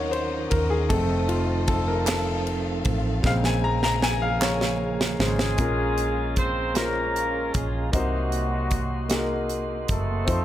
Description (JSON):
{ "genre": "slow gospel", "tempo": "51 BPM (dotted quarters)", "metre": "6/8", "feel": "straight", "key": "Bb minor", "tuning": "A4 = 440 Hz", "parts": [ { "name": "clear baby grand piano", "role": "accompaniment", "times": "0.0-10.4 s", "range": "Bb2 to Bb5", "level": "-27 LUFS", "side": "left 3 dB", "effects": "none" }, { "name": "mellow tonewheel organ", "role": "sustained chords", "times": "0.0-10.4 s", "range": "Db3 to C6", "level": "-31 LUFS", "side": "right 4 dB", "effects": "slow rotary speaker" }, { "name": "warm studio string section", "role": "sustained chords", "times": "0.0-5.6 s", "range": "Ab4 to Gb5", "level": "-35 LUFS", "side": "left 2 dB", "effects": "none" }, { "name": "hollow-body short-scale fingered electric bass", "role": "bass", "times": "0.0-10.4 s", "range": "F1 to F2", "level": "-28 LUFS", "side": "equal", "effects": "none" }, { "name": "modern studio drum kit", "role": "drums", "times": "0.1-10.4 s", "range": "hi-hat, kick drum, ride cymbal, snare drum", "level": "-27 LUFS", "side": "right 1 dB", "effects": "none" }, { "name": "group handclap", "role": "percussion", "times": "2.1-4.8 s", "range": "none", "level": "-31 LUFS", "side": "right 5 dB", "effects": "none" }, { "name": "warm horn section", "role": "melody", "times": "5.2-10.4 s", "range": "Gb3 to C5", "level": "-28 LUFS", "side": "equal", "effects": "none" } ], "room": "moderate large studio reverb, RT60 0.8 s, studio reverb", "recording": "none", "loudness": "-22 LUFS", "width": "side -12 dB against mid", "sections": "0.0-5.6 A section; 5.6-10.4 B section", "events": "grand piano solo 0.0-5.6; drum fill 3.2-5.6", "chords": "0.0 Ebm7; 0.9 F7; 3.2 Bbm7; 7.9 Cm7b5" }